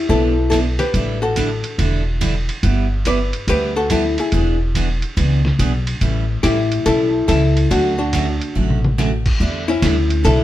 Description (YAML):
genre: country, western swing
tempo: 142 BPM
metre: 4/4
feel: swing 66% on 8ths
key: unclear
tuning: A4 = 440 Hz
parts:
  - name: archtop guitar, miked and amplified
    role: melody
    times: 0.0-10.4 s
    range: C#4 to D5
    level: -18 LUFS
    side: left 2 dB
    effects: none
  - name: picked steel-string acoustic guitar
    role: accompaniment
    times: 0.1-10.4 s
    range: D3 to A4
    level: -24 LUFS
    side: right 3 dB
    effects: none
  - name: upright bass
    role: bass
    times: 0.1-10.4 s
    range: E1 to E2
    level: -18 LUFS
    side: equal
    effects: none
  - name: lo-fi sampler-style drum kit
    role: drums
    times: 0.1-10.4 s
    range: crash cymbal, hi-hat, kick drum, ride cymbal, snare drum, toms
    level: -24 LUFS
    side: equal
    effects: none
room: moderate stone room reverb, RT60 1.3 s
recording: band playing live in one room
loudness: -15 LUFS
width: side -13 dB against mid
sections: 0.0-9.4 A section; 9.4-10.4 B section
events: drum fill 8.6-9.0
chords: 0.0 Em7; 0.9 A7sus4; 2.6 G6; 4.3 E7; 6.0 A7; 7.7 Dmaj7; 9.4 A7sus4